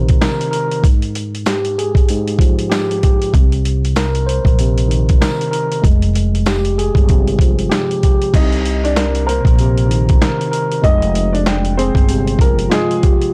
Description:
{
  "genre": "hip hop, boom-bap hip-hop",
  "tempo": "96 BPM",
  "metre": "4/4",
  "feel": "swing 57% on 16ths",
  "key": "unclear",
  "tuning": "A4 = 441 Hz",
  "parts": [
    { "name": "tine electric piano", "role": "accompaniment", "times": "0.0-13.3 s", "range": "Ab2 to G5", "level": "-21 LUFS", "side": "equal", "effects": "cassette tape, high-pass filter, low-pass filter" },
    { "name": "upright bass", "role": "bass", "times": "0.0-12.7 s", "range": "F1 to C2", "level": "-20 LUFS", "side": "equal", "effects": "none" },
    { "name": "boom bap sampler-style drum kit", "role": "drums", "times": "0.1-13.3 s", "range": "crash cymbal, hi-hat, kick drum, snare drum", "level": "-17 LUFS", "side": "equal", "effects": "none" },
    { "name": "tambourine", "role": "percussion", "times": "0.2-7.9 s", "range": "none", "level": "-39 LUFS", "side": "equal", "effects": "none" },
    { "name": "warm upright piano", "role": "melody", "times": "8.4-13.0 s", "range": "Ab3 to Eb5", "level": "-23 LUFS", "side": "equal", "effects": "high-pass filter, low-pass filter, delay" }
  ],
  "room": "little or no reverb",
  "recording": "blown-out, overdriven recording, vinyl crackle, overdrive",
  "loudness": "-15 LUFS",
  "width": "mono",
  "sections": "0.0-8.3 A section; 8.3-13.3 B section",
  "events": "none",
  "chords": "0.0 Cm7; 0.8 Fmadd9; 3.3 Cm7; 5.8 Fmadd9; 8.3 Cm9; 10.8 Fm9",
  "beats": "0.21 | 0.84 1.46 2.09 2.71 | 3.34 3.96 4.59 5.21 | 5.84 6.46 7.09 7.71 | 8.34 8.96 9.59 10.21 | 10.84 11.46 12.09 12.71"
}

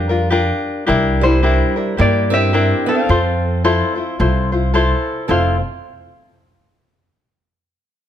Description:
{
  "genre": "Hawaiian",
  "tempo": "109 BPM",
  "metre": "4/4",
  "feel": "swing 60% on 8ths",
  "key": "F major",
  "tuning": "A4 = 439 Hz",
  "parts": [
    { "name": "tenor ukulele", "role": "melody", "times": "0.0-5.6 s", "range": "D4 to F5", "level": "-20 LUFS", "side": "left 2 dB", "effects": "none" },
    { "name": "fingerpicked steel-string acoustic guitar", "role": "second line", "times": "0.0-5.6 s", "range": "G3 to C4", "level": "-24 LUFS", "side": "right 4 dB", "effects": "none" },
    { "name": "tenor ukulele", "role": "accompaniment", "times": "0.0-5.6 s", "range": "D4 to C5", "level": "-18 LUFS", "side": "left 3 dB", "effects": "none" },
    { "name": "upright bass", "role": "bass", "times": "0.0-5.6 s", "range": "F1 to G2", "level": "-17 LUFS", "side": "equal", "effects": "none" }
  ],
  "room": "light reverb",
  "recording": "close, detailed microphones",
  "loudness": "-14 LUFS",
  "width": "side -10 dB against mid",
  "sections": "0.0-5.3 A section; 5.3-7.5 B section",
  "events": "none",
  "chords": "0.0 Bb6; 0.9 C9; 3.1 Fmaj7",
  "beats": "0.33 | 0.88 1.43 1.99 2.54 | 3.09 3.64 4.19 4.74 | 5.29"
}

